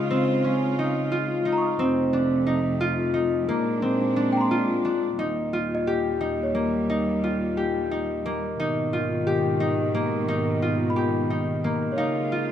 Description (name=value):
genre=contemporary instrumental, chamber music in an uneven meter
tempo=177 BPM (eighths)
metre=5/8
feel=straight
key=Eb mixolydian from 5.2 s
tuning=A4 = 440 Hz
part: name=dark chamber string section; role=sustained chords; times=0.0-12.5 s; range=Eb2 to F4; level=-27 LUFS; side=equal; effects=none
part: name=concert harp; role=arpeggios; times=0.0-12.5 s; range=Bb3 to G4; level=-24 LUFS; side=left 1 dB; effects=none
part: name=worn celesta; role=texture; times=0.0-7.7, 10.9-12.3 s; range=Db5 to Eb6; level=-32 LUFS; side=right 2 dB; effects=none
room=moderate recital hall reverb, RT60 1.8 s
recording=close, detailed microphones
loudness=-22 LUFS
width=side -10 dB against mid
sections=0.0-5.2 A section; 5.2-12.5 B section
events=none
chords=0.0 Dbmaj7; 1.8 F; 3.5 Bb7; 5.2 Eb; 8.6 Abm; 12.0 Db